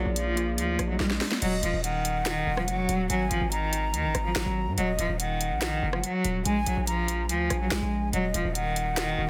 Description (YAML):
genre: hip hop, drill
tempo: 143 BPM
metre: 4/4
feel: half-time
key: Eb harmonic minor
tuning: A4 = 438 Hz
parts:
  - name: clear cello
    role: melody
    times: 0.0-9.3 s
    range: Eb3 to Ab3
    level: -31 LUFS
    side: equal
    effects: low-pass filter, tape echo
  - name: warbly lo-fi synth keys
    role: accompaniment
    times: 0.0-1.4 s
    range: Bb3 to D5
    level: -35 LUFS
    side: equal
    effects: chorus, low-pass filter
  - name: distorted 808-style bass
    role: bass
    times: 0.0-9.3 s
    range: D1 to Ab2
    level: -33 LUFS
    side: equal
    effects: distortion
  - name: swell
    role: sound effects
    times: 0.9-1.4 s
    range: none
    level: -47 LUFS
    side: equal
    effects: none
  - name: drill drum kit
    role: drums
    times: 0.2-9.1 s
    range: crash cymbal, finger snaps, hi-hat, rim click, snare drum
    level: -33 LUFS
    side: equal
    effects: none
  - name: breathy mellow silver concert flute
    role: second line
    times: 1.4-9.3 s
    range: Eb5 to Bb5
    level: -35 LUFS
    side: equal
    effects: tape echo
  - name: granular cloud pad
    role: sustained chords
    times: 8.6-9.3 s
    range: Eb3 to Bb4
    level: -42 LUFS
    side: equal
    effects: built-in reverb
room: little or no reverb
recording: dense, heavily limited modern master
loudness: -27 LUFS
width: mono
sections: 0.0-1.4 A section; 1.4-9.3 B section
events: drum fill 1.0-1.4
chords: 0.0 Bb7; 1.4 Ebm; 3.1 Absus2; 4.8 Ebm; 6.5 Bb7(no3); 8.1 Ebm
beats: 0.16 0.58 1.00 | 1.42 1.84 2.26 2.68 | 3.10 3.52 3.94 4.36 | 4.78 5.20 5.62 6.04 | 6.46 6.88 7.29 7.71 | 8.13 8.55 8.97